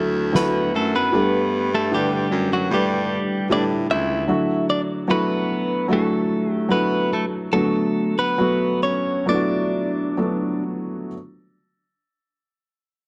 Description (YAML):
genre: pop ballad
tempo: 64-76 BPM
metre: 4/4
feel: straight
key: D major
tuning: A4 = 440 Hz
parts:
  - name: direct-recorded clean electric guitar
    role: melody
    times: 0.0-10.6 s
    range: F#3 to E5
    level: -25 LUFS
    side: equal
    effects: spring reverb, slapback echo
  - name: felt-muted upright piano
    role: accompaniment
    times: 0.0-11.1 s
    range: G2 to B4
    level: -25 LUFS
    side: equal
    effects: none
  - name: warm baritone saxophone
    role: bass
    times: 0.0-4.3 s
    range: C#2 to A2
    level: -26 LUFS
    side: equal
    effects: none
  - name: soft-mallet drum kit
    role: drums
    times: 0.3-0.9 s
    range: ride cymbal, snare drum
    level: -24 LUFS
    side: equal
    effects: none
room: light reverb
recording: dry, close 1970s-style studio recording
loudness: -21 LUFS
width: mono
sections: 0.0-11.1 A section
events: slowing down 4.3-11.1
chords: 0.0 Dadd9; 1.1 Gsus2; 4.3 Dadd9; 7.5 D6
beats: 0.34 | 1.13 1.92 2.71 3.50 | 4.28 5.08 5.89 6.71 | 7.54 8.39 9.27 10.19